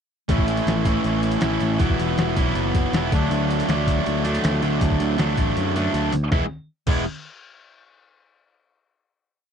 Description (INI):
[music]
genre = indie rock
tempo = 159 BPM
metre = 4/4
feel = straight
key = unclear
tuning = A4 = 440 Hz
[part]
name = fuzz guitar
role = riff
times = 0.3-7.0 s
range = A2 to G#4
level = -22 LUFS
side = right 1 dB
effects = distortion
[part]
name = picked electric bass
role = bass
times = 0.3-7.0 s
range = E1 to F#2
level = -24 LUFS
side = equal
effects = none
[part]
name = trip hop sampler-style drum kit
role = drums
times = 0.3-7.0 s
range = crash cymbal, hi-hat, kick drum, snare drum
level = -24 LUFS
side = equal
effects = none
[sound]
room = little or no reverb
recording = dry, close 1970s-style studio recording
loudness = -19 LUFS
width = side -7 dB against mid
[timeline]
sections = 0.3-6.3 pre-chorus; 6.3-7.8 final chord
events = kick and snare drop out 5.6-6.3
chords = 0.3 A; 1.8 Esus2; 3.1 D; 6.3 E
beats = | 0.29 0.67 1.05 1.43 | 1.80 2.18 2.56 2.94 | 3.31 3.69 4.07 4.45 | 4.82 5.20 5.57 5.95 | 6.32 6.69